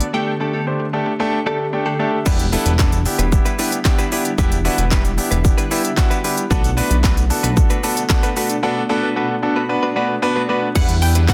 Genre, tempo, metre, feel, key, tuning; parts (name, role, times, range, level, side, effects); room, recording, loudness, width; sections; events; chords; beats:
dance-pop; 113 BPM; 4/4; straight; E minor; A4 = 440 Hz
clear concert grand piano; accompaniment; 0.0-11.3 s; A3 to B5; -23 LUFS; equal; sidechain pumping
shimmering ambient pad; sustained chords; 0.0-11.3 s; B2 to A4; -31 LUFS; equal; chorus, built-in reverb, sidechain pumping
direct-recorded clean electric guitar; riff; 0.0-11.3 s; G3 to B4; -28 LUFS; equal; lush chorus
house drum kit; drums; 0.0-11.3 s; crash cymbal, handclaps, hi-hat, kick drum, shaker, snare drum; -20 LUFS; equal
glassy wavetable pluck; melody; 0.1-1.7, 10.8-11.3 s; F#5 to G5; -29 LUFS; equal; chorus, dub echo
chorused synth bass; bass; 2.3-11.3 s; E1 to E2; -20 LUFS; equal; sidechain pumping
tube shaker; percussion; 2.3-8.6 s; -38 LUFS; equal
light reverb, digital ambience; dense, heavily limited modern master; -18 LUFS; mono
0.0-2.3 A section; 2.3-10.8 B section
grand piano fill 1.2-2.3, 5.4-6.5
0.1 Dsus4; 2.3 Em7; 6.5 Bm7; 10.8 Em7
| 0.14 0.67 1.20 1.73 | 2.26 2.79 3.32 3.85 | 4.38 4.92 5.45 5.98 | 6.51 7.04 7.57 8.10 | 8.63 9.16 9.69 10.22 | 10.76 11.29